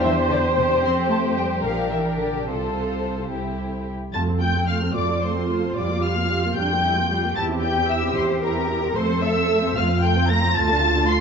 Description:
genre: quick classical-period movement for string orchestra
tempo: 75 BPM (dotted quarters)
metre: 6/8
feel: straight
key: F major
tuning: A4 = 441 Hz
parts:
  - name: muted studio violin section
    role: melody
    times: 0.0-11.2 s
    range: C5 to C7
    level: -27 LUFS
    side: left 3 dB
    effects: none
  - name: muted studio violin section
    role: second line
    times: 0.0-11.2 s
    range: C4 to C6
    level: -26 LUFS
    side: left 3 dB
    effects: none
  - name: muted studio viola section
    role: accompaniment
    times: 0.0-11.2 s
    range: G3 to C5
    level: -25 LUFS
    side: right 1 dB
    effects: none
  - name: muted studio cello section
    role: bass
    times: 0.0-11.2 s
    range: C3 to A4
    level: -27 LUFS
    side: right 2 dB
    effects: none
  - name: muted studio double bass section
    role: bass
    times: 0.0-11.2 s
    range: Bb1 to F2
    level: -25 LUFS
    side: right 2 dB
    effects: none
room: wet recital hall reverb, RT60 1.3 s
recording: dark, warm production, nothing above 7.9 kHz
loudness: -19 LUFS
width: side -6 dB against mid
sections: 0.0-4.1 A section; 4.1-11.2 B section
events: none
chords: 0.0 C/E; 0.8 F; 1.6 Bb; 2.5 F/C; 4.1 F; 5.8 Gm7/F; 7.4 C/E; 9.0 F; 10.5 Dm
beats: 0.04 | 0.84 1.65 | 2.48 3.31 | 4.14 4.96 | 5.76 6.57 | 7.37 8.17 | 8.96 9.75 | 10.55

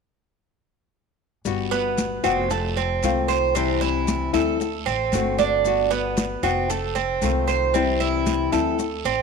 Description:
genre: latin, Cuban son and guajira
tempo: 114 BPM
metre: 4/4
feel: straight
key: G major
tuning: A4 = 440 Hz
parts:
  - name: nylon-string guitar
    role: accompaniment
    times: 1.4-8.8 s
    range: C3 to F#4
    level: -25 LUFS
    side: left 11 dB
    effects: none
  - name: upright bass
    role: bass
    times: 1.5-9.2 s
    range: F1 to D2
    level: -28 LUFS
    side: left 1 dB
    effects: none
  - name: congas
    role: percussion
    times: 1.5-9.2 s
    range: none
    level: -30 LUFS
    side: left 2 dB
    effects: none
  - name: guiro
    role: percussion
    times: 1.5-9.2 s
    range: none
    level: -36 LUFS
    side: right 13 dB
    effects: none
  - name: maracas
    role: percussion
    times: 1.5-9.2 s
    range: none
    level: -37 LUFS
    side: left 16 dB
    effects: none
  - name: Cuban tres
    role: arpeggios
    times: 1.7-9.2 s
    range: A3 to C5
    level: -23 LUFS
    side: right 8 dB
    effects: none
room: moderate echo chamber reverb, RT60 1.7 s, studio reverb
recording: 1960s-style stereo with parts hard left and right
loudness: -20 LUFS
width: side -5 dB against mid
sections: 1.5-9.2 A section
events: none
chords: 1.5 Gmaj7; 2.5 F7; 3.6 C; 4.6 D7; 5.7 Gmaj7; 6.7 F7; 7.7 C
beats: | 1.46 1.98 2.51 3.03 | 3.56 4.08 4.61 5.13 | 5.65 6.18 6.70 7.22 | 7.75 8.27 8.79

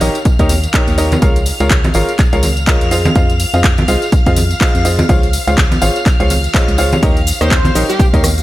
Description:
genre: piano house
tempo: 124 BPM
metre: 4/4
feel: swing 58% on 16ths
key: Eb mixolydian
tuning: A4 = 440 Hz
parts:
  - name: string machine, violins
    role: sustained chords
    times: 0.0-8.4 s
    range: F5 to F6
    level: -24 LUFS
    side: equal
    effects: ensemble chorus, sidechain pumping
  - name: bright upright piano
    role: riff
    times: 0.0-8.2 s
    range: Eb4 to F5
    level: -18 LUFS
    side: equal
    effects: sidechain pumping, dub echo
  - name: organ-like FM bass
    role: bass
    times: 0.0-8.4 s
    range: Ab1 to F2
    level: -16 LUFS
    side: equal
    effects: sidechain pumping
  - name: house drum kit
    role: drums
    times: 0.0-8.4 s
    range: handclaps, hi-hat, rim click, shaker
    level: -20 LUFS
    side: left 1 dB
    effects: studio ambience
  - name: tambourine and congas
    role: percussion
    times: 0.0-8.4 s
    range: none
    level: -21 LUFS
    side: equal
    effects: none
  - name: electronic kick drum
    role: drums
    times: 0.3-8.2 s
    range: none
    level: -13 LUFS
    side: equal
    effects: studio ambience
  - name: plucky unison lead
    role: melody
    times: 7.4-8.1 s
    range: G4 to C5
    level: -19 LUFS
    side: equal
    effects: none
room: digital ambience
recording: none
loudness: -10 LUFS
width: side -16 dB against mid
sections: 0.0-8.4 A section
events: none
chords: 0.0 Eb7; 1.2 Bbm7; 2.9 Fm7; 5.1 Dbmaj7; 7.0 Eb7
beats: 0.25 0.74 | 1.22 1.71 2.19 2.67 | 3.16 3.64 4.12 4.61 | 5.09 5.58 6.06 6.54 | 7.03 7.51 8.00

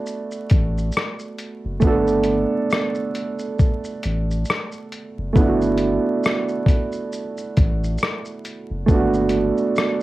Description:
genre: lo-fi hip hop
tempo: 68 BPM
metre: 4/4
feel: swing 56% on 16ths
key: G major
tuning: A4 = 440 Hz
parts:
  - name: dark upright piano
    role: accompaniment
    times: 0.0-10.0 s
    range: A3 to A4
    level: -21 LUFS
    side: right 3 dB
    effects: none
  - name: dusty soul sampler-style drum kit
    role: drums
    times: 0.1-10.0 s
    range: hi-hat, kick drum, rim click, shaker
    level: -19 LUFS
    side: left 1 dB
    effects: vintage 12-bit sampler grit, cassette tape
  - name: saturated sub bass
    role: bass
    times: 0.5-9.5 s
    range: F#1 to A1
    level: -24 LUFS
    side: equal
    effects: none
room: light reverb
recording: home recording on cassette, vinyl crackle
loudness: -18 LUFS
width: side -17 dB against mid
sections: 0.0-10.0 A section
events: none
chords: 0.0 Gmaj9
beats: 0.07 0.95 | 1.83 2.71 3.60 4.48 | 5.36 6.24 7.12 8.01 | 8.89 9.77

